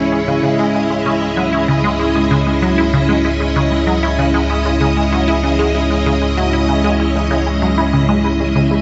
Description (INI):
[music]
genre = ambient, sequencer-driven space music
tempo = 96 BPM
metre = 4/4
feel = straight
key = C# minor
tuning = A4 = 441 Hz
[part]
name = string machine, full ensemble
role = sustained chords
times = 0.0-8.8 s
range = G#3 to D#5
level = -18 LUFS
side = equal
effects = ensemble chorus
[part]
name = resonant blip pluck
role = riff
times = 0.0-8.8 s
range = C#3 to G#4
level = -20 LUFS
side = equal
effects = phaser, tape echo
[part]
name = round analog bass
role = bass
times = 0.0-8.8 s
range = C#2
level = -23 LUFS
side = equal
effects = none
[part]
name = bubbling stepped-filter texture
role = texture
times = 0.0-8.8 s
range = E4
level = -32 LUFS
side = equal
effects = none
[sound]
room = moderate plate reverb, RT60 2.4 s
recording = dreamy mix soaked in reverb, nothing above 7.8 kHz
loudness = -15 LUFS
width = mono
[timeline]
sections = 0.0-8.8 A section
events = none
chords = 0.0 C#m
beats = | 0.44 1.06 1.69 2.31 | 2.94 3.56 4.19 4.81 | 5.44 6.06 6.69 7.31 | 7.94 8.56